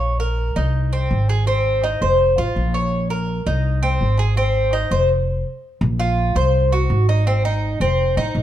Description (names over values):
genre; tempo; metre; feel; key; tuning
latin, Cuban son and guajira; 166 BPM; 4/4; straight; Bb minor; A4 = 440 Hz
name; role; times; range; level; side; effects
Cuban tres; arpeggios; 0.0-8.4 s; C4 to Db5; -20 LUFS; equal; none
upright bass; bass; 0.0-8.4 s; F1 to C2; -19 LUFS; equal; none
room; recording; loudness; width
light reverb; dark, warm production; -16 LUFS; side -12 dB against mid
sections
0.0-5.8 A section; 5.8-8.4 B section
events
stop 5.1-5.8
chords
0.0 Bbm; 0.7 Ab; 2.2 F; 2.9 Bbm; 3.6 Ab; 5.1 N.C.; 5.8 Bb5; 6.5 Cdim; 7.3 Ab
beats
| 0.02 0.38 0.74 1.10 | 1.47 1.83 2.19 2.56 | 2.92 3.28 3.65 4.01 | 4.37 4.73 5.09 5.46 | 5.82 6.18 6.54 6.90 | 7.27 7.63 7.99 8.35